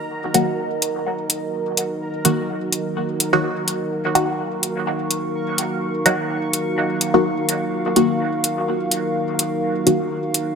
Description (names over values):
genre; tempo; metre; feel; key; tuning
dub techno; 126 BPM; 4/4; swing 55% on 16ths; Eb minor; A4 = 440 Hz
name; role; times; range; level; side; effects
dark analog pad; sustained chords; 0.0-10.6 s; Eb4 to F5; -24 LUFS; equal; chorus
bubbling stepped-filter texture; texture; 0.0-10.6 s; Bb4 to Db6; -30 LUFS; right 3 dB; chorus, built-in reverb
filtered dub chord stab; stabs; 0.3-10.1 s; Eb3 to Gb4; -21 LUFS; left 1 dB; phaser, dub echo
electronic hi-hat; drums; 0.3-10.4 s; none; -18 LUFS; equal; none
room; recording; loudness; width
moderate lush hall reverb, RT60 2.1 s; none; -18 LUFS; side -6 dB against mid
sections
0.0-10.6 A section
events
filter sweep on analog synth pad 0.0-10.6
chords
0.0 Ebm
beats
| 0.11 0.58 1.06 1.53 | 2.01 2.49 2.96 3.44 | 3.92 4.39 4.87 5.34 | 5.82 6.30 6.77 7.25 | 7.72 8.20 8.68 9.15 | 9.63 10.11